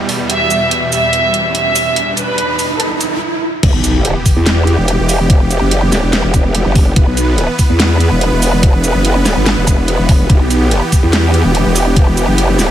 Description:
heavy wobble dubstep; 144 BPM; 4/4; half-time; E minor; A4 = 440 Hz
warm studio violin section; melody; 0.0-3.1 s; A4 to E5; -15 LUFS; right 1 dB; digital delay
supersaw chords; sustained chords; 0.0-12.7 s; E2 to B4; -18 LUFS; right 1 dB; sidechain pumping
riser and impact; sound effects; 0.0-5.3 s; -22 LUFS; right 1 dB
dubstep drum kit; drums; 0.1-12.7 s; crash cymbal, hi-hat, shaker, snare drum; -18 LUFS; right 1 dB
growl bass; bass; 3.6-12.7 s; E1 to E2; -12 LUFS; equal; chorus, overdrive
electronic kick drum; drums; 3.6-12.1 s; -10 LUFS; equal
light reverb, digital ambience; -10 LUFS; side -11 dB against mid
0.0-3.6 A section; 3.6-12.7 B section
build-up 0.0-3.6; riser 0.0-3.2; stop 3.2-3.6; drop 3.6-12.7; impact 3.6-5.3
0.0 Em
| 0.30 0.71 1.13 1.55 | 1.96 2.38 2.80 3.21 | 3.63 4.05 4.46 4.88 | 5.30 5.71 6.13 6.55 | 6.96 7.38 7.80 8.21 | 8.63 9.05 9.46 9.88 | 10.30 10.71 11.13 11.55 | 11.96 12.38

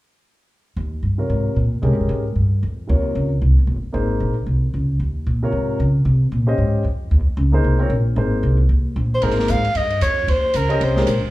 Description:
modal jazz; 227 BPM; 4/4; swing 60% on 8ths; Ab major; A4 = 440 Hz
upright bass; bass; 0.8-11.3 s; G1 to Db3; -18 LUFS; equal
warm concert grand piano; accompaniment; 1.2-11.1 s; C3 to Eb5; -23 LUFS; left 1 dB; plate reverb, slapback echo
warm soprano saxophone; melody; 9.1-11.2 s; Bb4 to F5; -20 LUFS; equal; plate reverb, slapback echo
open jazz drum kit; drums; 9.2-11.1 s; hi-hat, ride cymbal, snare drum; -28 LUFS; equal
little or no reverb; live gig heard through the venue's PA, club reverb; -16 LUFS; side -17 dB against mid
0.8-9.2 A section; 9.2-11.3 B section
0.8 Abmaj9
| 0.77 1.04 1.30 1.57 | 1.83 2.10 2.36 2.62 | 2.89 3.15 3.42 3.68 | 3.94 4.21 4.47 4.74 | 5.00 5.26 5.53 5.79 | 6.05 6.32 6.58 6.85 | 7.11 7.37 7.64 7.90 | 8.17 8.43 8.70 8.96 | 9.22 9.49 9.75 10.02 | 10.28 10.55 10.81 11.07

